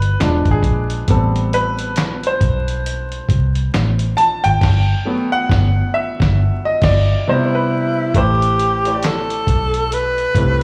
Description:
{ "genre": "R&B, neo-soul", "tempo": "68 BPM", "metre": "4/4", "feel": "swing 60% on 16ths", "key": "A dorian", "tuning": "A4 = 442 Hz", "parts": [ { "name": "clear concert grand piano", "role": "accompaniment", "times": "0.0-10.6 s", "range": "C3 to A5", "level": "-22 LUFS", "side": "equal", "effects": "slapback echo" }, { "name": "vintage muted fingered electric bass", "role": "bass", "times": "0.0-10.6 s", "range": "E1 to C2", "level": "-20 LUFS", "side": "equal", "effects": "none" }, { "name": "dusty soul sampler-style drum kit", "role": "drums", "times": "0.0-10.6 s", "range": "crash cymbal, handclaps, hi-hat, kick drum, snare drum", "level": "-22 LUFS", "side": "equal", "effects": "none" }, { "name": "breathy tenor saxophone", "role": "melody", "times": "7.3-10.6 s", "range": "E4 to B4", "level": "-20 LUFS", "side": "equal", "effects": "slapback echo" } ], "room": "digital ambience", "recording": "live gig heard through the venue's PA, club reverb, vinyl crackle", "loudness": "-17 LUFS", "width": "mono", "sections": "0.0-8.1 A section; 8.1-10.6 B section", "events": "grand piano solo 0.0-8.1; band accent 4.6-8.1", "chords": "0.2 E7b9; 1.1 Am9; 4.6 Gmaj9; 7.3 Cmaj7; 8.1 Am9", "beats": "0.20 | 1.08 1.97 2.85 3.73 | 4.61 5.50 6.38 7.26 | 8.14 9.03 9.91" }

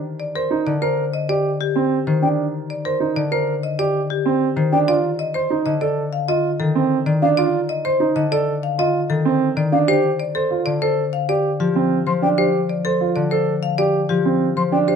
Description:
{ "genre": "classical, minimalist pattern music", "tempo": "96 BPM", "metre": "4/4", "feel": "straight", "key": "unclear", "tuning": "A4 = 441 Hz", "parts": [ { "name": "marimba with medium hard mallets", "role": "melody", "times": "0.2-15.0 s", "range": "G4 to F5", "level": "-23 LUFS", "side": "left 7 dB", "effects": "none" }, { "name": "dark concert grand piano", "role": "arpeggios", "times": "0.4-15.0 s", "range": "C4 to C5", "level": "-20 LUFS", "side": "right 7 dB", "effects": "none" }, { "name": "concert harp", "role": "accompaniment", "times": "0.7-14.9 s", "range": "D3 to F3", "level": "-23 LUFS", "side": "left 3 dB", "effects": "none" }, { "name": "mellow hollow concert flute", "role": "arpeggios", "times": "2.2-14.8 s", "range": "F5 to C6", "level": "-23 LUFS", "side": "left 6 dB", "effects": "none" } ], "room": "moderate large studio reverb, RT60 0.9 s", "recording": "none", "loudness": "-17 LUFS", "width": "side -7 dB against mid", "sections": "0.0-15.0 A section", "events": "none", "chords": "0.0 Cm; 4.9 F7(no3); 9.9 Dm7", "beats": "0.51 1.13 1.75 | 2.38 3.00 3.63 4.25 | 4.88 5.50 6.13 6.75 | 7.38 8.01 8.63 9.26 | 9.88 10.51 11.13 11.76 | 12.38 13.01 13.63 14.26 | 14.88" }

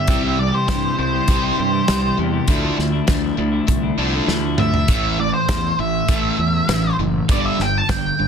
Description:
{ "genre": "quiet-loud alternative rock", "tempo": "100 BPM", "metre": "4/4", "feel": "straight", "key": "A minor", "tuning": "A4 = 440 Hz", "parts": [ { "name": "octave-fuzz lead guitar", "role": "melody", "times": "0.0-8.3 s", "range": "C5 to A5", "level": "-22 LUFS", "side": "right 1 dB", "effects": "distortion, digital delay" }, { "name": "clean electric guitar", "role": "arpeggios", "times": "0.0-4.9 s", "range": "C3 to G4", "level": "-25 LUFS", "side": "left 6 dB", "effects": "wide subtle chorus" }, { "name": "crunchy overdriven guitar", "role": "riff", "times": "0.0-8.3 s", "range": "G2 to D4", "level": "-24 LUFS", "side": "right 14 dB", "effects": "none" }, { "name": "sludgy distorted guitar", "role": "riff", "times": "0.0-8.3 s", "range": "G2 to D4", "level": "-24 LUFS", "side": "left 10 dB", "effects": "overdrive" }, { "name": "fuzz fingered electric bass", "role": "bass", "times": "0.1-8.3 s", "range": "F#1 to G2", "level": "-24 LUFS", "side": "equal", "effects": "overdrive" }, { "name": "loose indie drum kit", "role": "drums", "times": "0.1-8.0 s", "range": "hi-hat, kick drum, snare drum, toms", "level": "-20 LUFS", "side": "equal", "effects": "none" } ], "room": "light reverb, small room reverb", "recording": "dense, heavily limited modern master", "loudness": "-16 LUFS", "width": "side -7 dB against mid", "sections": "0.0-8.3 A section", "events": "lead electric guitar solo 0.0-8.3; drum fill 4.3-4.9", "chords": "0.1 C; 2.5 Dmadd9; 4.9 A5; 7.3 G5", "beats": "| 0.08 0.68 1.28 1.88 | 2.48 3.08 3.69 4.29 | 4.89 5.49 6.09 6.69 | 7.29 7.89" }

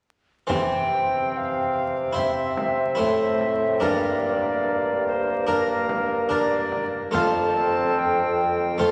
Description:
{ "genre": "classical, renaissance-style consort dance", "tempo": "72 BPM", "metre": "4/4", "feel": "straight", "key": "C mixolydian", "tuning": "A4 = 440 Hz", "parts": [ { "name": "tenor recorder", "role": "melody", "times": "0.5-8.9 s", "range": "Bb4 to A5", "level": "-28 LUFS", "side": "equal", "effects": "none" }, { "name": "brilliant trombone", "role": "accompaniment", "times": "0.5-8.9 s", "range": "Bb3 to C4", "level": "-31 LUFS", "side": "equal", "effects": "none" }, { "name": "harpsichord", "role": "accompaniment", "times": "0.5-8.9 s", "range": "F2 to C5", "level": "-28 LUFS", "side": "equal", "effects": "none" }, { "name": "mellow bassoon", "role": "bass", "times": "0.5-8.9 s", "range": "F2 to C3", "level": "-30 LUFS", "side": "equal", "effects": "none" }, { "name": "frame drum", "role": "percussion", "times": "0.5-8.9 s", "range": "none", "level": "-38 LUFS", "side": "equal", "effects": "none" } ], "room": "wet cathedral reverb, RT60 5.9 s", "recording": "vinyl crackle", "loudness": "-23 LUFS", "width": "mono", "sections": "0.5-8.9 A section", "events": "none", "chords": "0.5 C; 3.8 Gm; 7.2 F", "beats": "| 0.49 1.32 2.16 2.99 | 3.82 4.66 5.49 6.32 | 7.16 7.99 8.81" }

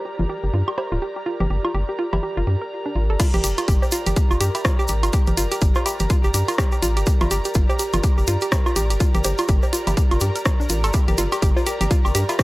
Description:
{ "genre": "minimal techno", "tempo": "124 BPM", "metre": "4/4", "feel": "swing 59% on 16ths", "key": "G minor", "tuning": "A4 = 440 Hz", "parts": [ { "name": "airy breathy pad", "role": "texture", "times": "0.0-12.4 s", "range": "G4 to Bb5", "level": "-29 LUFS", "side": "equal", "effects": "chorus, sidechain pumping" }, { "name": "hollow square pluck", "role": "riff", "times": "0.1-12.4 s", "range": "D4 to Bb4", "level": "-26 LUFS", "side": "equal", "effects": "chorus, cassette tape, sidechain pumping, tape echo" }, { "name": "house drum kit", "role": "drums", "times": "0.1-12.4 s", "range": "crash cymbal, hi-hat, rim click", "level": "-27 LUFS", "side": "equal", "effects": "overdrive, low-pass filter on hats, low-pass filter on cymbals, low-pass filter on snare, low-pass filter on room" }, { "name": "rubbery square bass", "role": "bass", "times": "0.2-12.2 s", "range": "D1 to G2", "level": "-22 LUFS", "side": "equal", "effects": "sidechain pumping" }, { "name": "congas, woodblock, cowbell and bongos", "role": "percussion", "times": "0.2-12.4 s", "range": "none", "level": "-28 LUFS", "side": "right 2 dB", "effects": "analog delay" }, { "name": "electronic kick drum", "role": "drums", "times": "3.2-12.4 s", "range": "none", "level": "-19 LUFS", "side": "equal", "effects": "overdrive" }, { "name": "tube shaker", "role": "percussion", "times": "3.2-12.4 s", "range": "none", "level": "-31 LUFS", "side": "equal", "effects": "none" } ], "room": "little or no reverb", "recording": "dry, gritty hardware recording", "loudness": "-18 LUFS", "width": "side -20 dB against mid", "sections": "0.0-3.2 A section; 3.2-12.4 B section", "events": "filter sweep on synth arpeggio sound 0.0-3.2; drop 3.2-12.4", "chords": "0.0 Gm", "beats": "0.29 0.78 | 1.26 1.75 2.23 2.71 | 3.20 3.68 4.16 4.65 | 5.13 5.62 6.10 6.58 | 7.07 7.55 8.04 8.52 | 9.00 9.49 9.97 10.46 | 10.94 11.42 11.91 12.39" }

